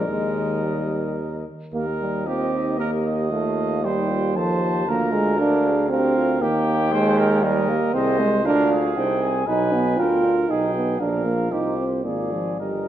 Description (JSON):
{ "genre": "classical, brass quintet", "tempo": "116 BPM", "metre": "3/4", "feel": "rubato", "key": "Eb major", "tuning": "A4 = 440 Hz", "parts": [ { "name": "dark cornet", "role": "melody", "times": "0.0-12.9 s", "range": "C5 to Bb5", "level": "-29 LUFS", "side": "left 8 dB", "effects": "none" }, { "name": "mellow trumpet", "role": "second line", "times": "0.0-12.9 s", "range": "G4 to Eb5", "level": "-29 LUFS", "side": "right 5 dB", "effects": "none" }, { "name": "mellow French horn", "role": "accompaniment", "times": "0.0-12.9 s", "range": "G3 to Bb4", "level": "-29 LUFS", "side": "left 2 dB", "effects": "none" }, { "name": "warm euphonium", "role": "accompaniment", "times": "0.0-12.9 s", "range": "Eb3 to F4", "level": "-23 LUFS", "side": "right 2 dB", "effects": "none" }, { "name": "clear bass trombone", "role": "bass", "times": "0.0-12.9 s", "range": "G1 to Eb2", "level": "-25 LUFS", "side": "right 2 dB", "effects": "none" } ], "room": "moderate recital hall reverb, RT60 1.6 s", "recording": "nothing above 10.7 kHz", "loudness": "-19 LUFS", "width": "side -11 dB against mid", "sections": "0.0-1.7 A section; 1.7-12.9 B section", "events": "none", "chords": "0.1 Eb; 3.3 F7/Eb; 4.9 Bb7/D; 6.4 Eb; 7.9 Ab/C; 9.5 Abm/Cb; 11.0 Bb; 11.5 Cm; 12.0 Bb7/Ab" }